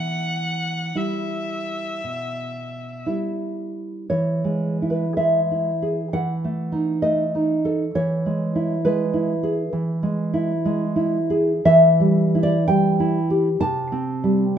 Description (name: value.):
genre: romantic duo for violin and classical guitar.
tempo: 53-68 BPM.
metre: 4/4.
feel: rubato.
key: E minor, E major from 4.1 s.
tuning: A4 = 440 Hz.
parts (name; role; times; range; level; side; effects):
warm violin; melody; 0.0-3.1 s; E5 to F#5; -28 LUFS; left 2 dB; none.
nylon-string guitar; accompaniment; 0.0-14.6 s; B2 to A5; -19 LUFS; right 1 dB; none.
room: light reverb.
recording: band playing live in one room.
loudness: -19 LUFS.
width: side -9 dB against mid.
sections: 0.0-4.1 A section; 4.1-14.6 B section.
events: none.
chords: 0.0 Em; 4.1 E; 6.1 D#dim/E; 8.0 E; 11.6 Em; 13.6 C5.